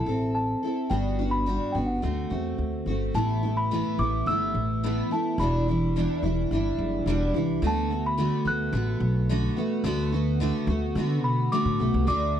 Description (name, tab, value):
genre	acoustic pop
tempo	107 BPM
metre	4/4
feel	straight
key	unclear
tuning	A4 = 440 Hz
part	celesta	melody	0.0-12.4 s	F#5 to F#6	-30 LUFS	left 1 dB	none
part	picked steel-string acoustic guitar	accompaniment	0.0-12.4 s	E2 to A4	-27 LUFS	equal	double-tracked left and right
part	upright bass	bass	0.1-12.4 s	E1 to D3	-27 LUFS	equal	none
room	light reverb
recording	dry, close 1970s-style studio recording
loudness	-23 LUFS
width	side -9 dB against mid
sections	0.0-3.1 A section; 3.1-12.1 B section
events	none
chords	0.0 Am; 0.9 Gmaj7; 2.0 D7; 3.1 Asus2; 5.4 Em7; 7.6 D6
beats	0.35 | 0.91 1.47 2.03 2.59 | 3.15 3.71 4.27 4.83 | 5.38 5.94 6.50 7.06 | 7.62 8.18 8.73 9.29 | 9.85 10.40 10.96 11.52 | 12.07